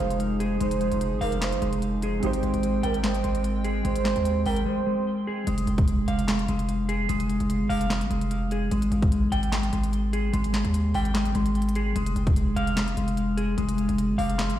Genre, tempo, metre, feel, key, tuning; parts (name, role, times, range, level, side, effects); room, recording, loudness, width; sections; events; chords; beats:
hip hop, trap; 148 BPM; 4/4; half-time; F minor; A4 = 439 Hz
gliding portamento lead; second line; 0.0-5.0 s; Bb4 to C5; -31 LUFS; right 8 dB; chorus, tape echo
felt-muted upright piano; accompaniment; 0.0-5.5 s; F3 to C5; -36 LUFS; right 8 dB
hollow soft pad; sustained chords; 0.0-5.4 s; F3 to G5; -34 LUFS; right 4 dB; chorus
clean electric guitar; arpeggios; 0.0-14.6 s; Ab3 to G5; -26 LUFS; equal; wide subtle chorus, tape echo
distorted 808-style bass; bass; 0.0-14.6 s; F1 to Eb2; -27 LUFS; equal; distortion
trap drum kit; drums; 0.0-14.6 s; handclaps, hi-hat, kick drum, snare drum; -28 LUFS; equal
light reverb, digital ambience; played on a big sound system in a bare room, large studio reverb; -23 LUFS; side -12 dB against mid
0.0-5.5 A section; 5.5-14.6 B section
break 4.7-5.5
0.0 Fm7; 2.2 Abmaj7; 5.5 Fm; 8.7 Abmaj7(no3); 12.0 Fm
0.20 | 0.61 1.01 1.42 1.82 | 2.23 2.63 3.04 3.44 | 3.85 4.25 4.66 5.07 | 5.47 5.88 6.28 6.69 | 7.09 7.50 7.90 8.31 | 8.71 9.12 9.53 9.93 | 10.34 10.74 11.15 11.55 | 11.96 12.36 12.77 13.17 | 13.58 13.98 14.39